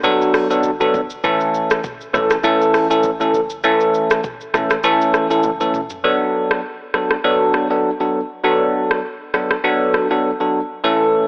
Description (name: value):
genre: afrobeats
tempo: 100 BPM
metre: 4/4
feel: swing 55% on 16ths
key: B minor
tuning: A4 = 443 Hz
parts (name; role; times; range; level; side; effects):
- barky tine electric piano; accompaniment; 0.0-11.3 s; E3 to A4; -18 LUFS; equal; phaser
- clean 808-style bass; bass; 0.0-6.0 s; E1 to B1; -42 LUFS; equal; none
- afro-pop drum kit; drums; 0.0-10.1 s; hi-hat, kick drum, rim click, shaker, toms; -24 LUFS; equal; soft clipping on snare
room: moderate plate reverb, RT60 2.5 s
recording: blown-out, overdriven recording, overdrive, telephone sound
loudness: -17 LUFS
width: mono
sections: 0.0-6.0 A section; 6.0-11.3 B section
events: drum fill 5.4-6.0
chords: 0.0 Bm7; 1.2 A; 6.0 Bm7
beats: 0.04 0.64 | 1.24 1.84 2.44 3.04 | 3.64 4.24 4.84 5.44 | 6.04 6.64 7.24 7.84 | 8.44 9.04 9.64 10.24 | 10.84